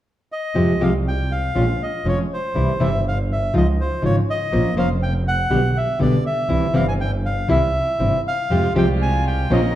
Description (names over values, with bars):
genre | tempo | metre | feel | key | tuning
tango | 120 BPM | 4/4 | rubato | F minor | A4 = 442 Hz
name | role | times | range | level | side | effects
bandoneon | melody | 0.3-9.8 s | C5 to Ab5 | -24 LUFS | equal | none
nylon-string guitar | accompaniment | 0.5-9.6 s | B2 to C5 | -21 LUFS | left 1 dB | none
warm double bass | bass | 0.5-9.7 s | F1 to F2 | -22 LUFS | right 1 dB | none
warm chamber string section | stabs | 8.5-9.7 s | Ab3 to Bb4 | -27 LUFS | right 2 dB | none
room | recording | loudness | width
wet recital hall reverb, RT60 1.5 s | dark, warm production | -17 LUFS | side -12 dB against mid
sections
0.6-9.8 A section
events
none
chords
0.0 N.C.; 0.6 Fmadd9; 1.6 Bbm7; 2.6 C; 3.5 Dbadd9; 4.5 Bbmadd9; 5.5 G/B; 6.5 C; 8.5 Fmadd9